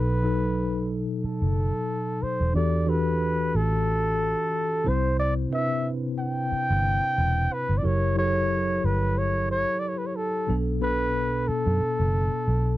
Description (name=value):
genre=lush 1970s-style soul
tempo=91 BPM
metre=4/4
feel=swing 54% on 16ths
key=unclear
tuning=A4 = 437 Hz
part: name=breathy flugelhorn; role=melody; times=0.0-12.8 s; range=A4 to G5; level=-27 LUFS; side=equal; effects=none
part: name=tine electric piano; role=accompaniment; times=0.0-12.8 s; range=B2 to C#5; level=-28 LUFS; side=left 1 dB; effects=medium stereo tremolo
part: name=vintage muted fingered electric bass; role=bass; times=0.0-12.8 s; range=E1 to F#2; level=-26 LUFS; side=equal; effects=none
room=little or no reverb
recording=dry, close 1970s-style studio recording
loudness=-23 LUFS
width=side -15 dB against mid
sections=0.0-12.8 A section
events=none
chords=0.0 B7; 2.5 Em11; 4.9 Cmaj7; 7.8 F#7b9; 10.5 Bm7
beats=0.56 1.22 1.89 | 2.55 3.21 3.87 4.53 | 5.19 5.85 6.51 7.18 | 7.84 8.50 9.16 9.82 | 10.48 11.14 11.81 12.47